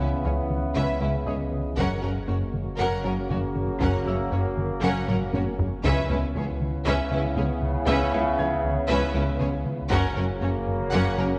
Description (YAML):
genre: cinematic, hybrid orchestral and electronic film score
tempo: 118 BPM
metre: 4/4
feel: straight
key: C# dorian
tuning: A4 = 441 Hz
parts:
  - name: warm symphonic violin section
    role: melody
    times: 0.0-11.3 s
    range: A#4 to F#5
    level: -36 LUFS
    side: equal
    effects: none
  - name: warm studio violin section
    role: second line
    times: 0.0-11.3 s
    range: C#4 to B4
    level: -36 LUFS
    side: equal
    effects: none
  - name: rich symphonic viola section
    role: accompaniment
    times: 0.0-11.3 s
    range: C#4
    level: -36 LUFS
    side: equal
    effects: none
  - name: dark French horn section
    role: sustained chords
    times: 0.0-11.4 s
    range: C#4 to F#4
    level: -35 LUFS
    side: equal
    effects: none
  - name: warbly tape-like pad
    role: sustained chords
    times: 0.0-11.4 s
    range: C#3 to B4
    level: -38 LUFS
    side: equal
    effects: none
  - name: warm trombone section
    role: sustained chords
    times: 0.0-11.4 s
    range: C#3 to B3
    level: -35 LUFS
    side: equal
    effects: none
  - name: thumb-piano-like synth pluck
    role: arpeggios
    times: 0.0-11.3 s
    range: C#3 to F#4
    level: -40 LUFS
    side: equal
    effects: none
  - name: round analog bass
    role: riff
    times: 0.0-11.3 s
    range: C#2 to F#3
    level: -34 LUFS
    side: equal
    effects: none
  - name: dark symphonic cello section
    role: bass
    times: 0.0-11.3 s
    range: C#2 to F#2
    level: -35 LUFS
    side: equal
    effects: none
  - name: pure sine sub bass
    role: bass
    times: 0.0-11.4 s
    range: F#1 to C#2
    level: -36 LUFS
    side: equal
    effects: none
  - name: warm studio double bass section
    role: bass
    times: 0.0-11.3 s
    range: F#1 to C#2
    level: -35 LUFS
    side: equal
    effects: none
  - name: clear baby grand piano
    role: texture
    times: 0.0-11.4 s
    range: D#5 to A#6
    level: -44 LUFS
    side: equal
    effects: digital delay
  - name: taiko ensemble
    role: drums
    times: 0.5-10.9 s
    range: none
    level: -34 LUFS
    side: equal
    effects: none
room: wet concert hall reverb, RT60 2.3 s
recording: worn, warbling old tape, cassette tape, warbly pitch drift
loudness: -25 LUFS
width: mono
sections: 0.0-11.4 A section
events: drum fill 5.1-5.8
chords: 0.0 C#m7; 1.8 F#; 5.8 C#m7; 9.9 F#